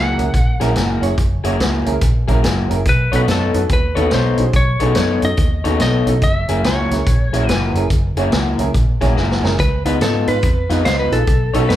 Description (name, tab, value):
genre	electric blues shuffle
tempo	143 BPM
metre	4/4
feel	swing 64% on 8ths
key	F# mixolydian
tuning	A4 = 440 Hz
part	clean lap steel guitar	melody	0.0-11.8 s	A4 to F#5	-22 LUFS	equal	none
part	electric guitar through a small old amp	riff	0.0-11.8 s	C#3 to C#5	-20 LUFS	left 3 dB	none
part	vintage muted fingered electric bass	bass	0.0-11.8 s	F#1 to G#2	-19 LUFS	equal	none
part	clear upright piano	accompaniment	0.2-11.6 s	C#4 to G#5	-25 LUFS	right 4 dB	none
part	vintage drum kit	drums	0.2-11.8 s	hi-hat, kick drum, snare drum	-19 LUFS	equal	none
part	warm saxophone section	stabs	10.3-11.8 s	C#4 to B4	-26 LUFS	right 6 dB	none
room	moderate large studio reverb, RT60 1.1 s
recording	band playing live in one room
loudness	-14 LUFS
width	side -12 dB against mid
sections	0.0-11.8 A section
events	upright piano fill 9.0-9.6; drum fill 9.2-9.6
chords	0.0 F#9; 2.9 B9; 6.2 F#9; 9.6 C#9